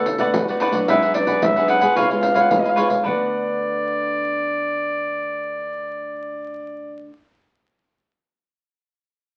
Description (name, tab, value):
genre	samba and choro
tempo	111 BPM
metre	4/4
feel	straight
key	D major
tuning	A4 = 442 Hz
part	warm clarinet	melody	0.0-7.1 s	A4 to F#5	-24 LUFS	equal	none
part	cavaquinho	accompaniment	0.0-7.1 s	D4 to F#5	-25 LUFS	equal	none
part	nylon-string guitar	accompaniment	0.0-7.2 s	G#2 to F#4	-27 LUFS	equal	none
part	surdo, pandeiro and egg shaker	percussion	0.1-3.2 s	none	-28 LUFS	equal	none
room	wet studio reverb, RT60 0.5 s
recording	very old 78 rpm record, vinyl crackle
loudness	-20 LUFS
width	mono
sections	0.0-3.0 A section; 3.0-7.4 B section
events	none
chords	0.0 D6; 0.9 G#m7b5; 2.0 C#7; 3.0 D6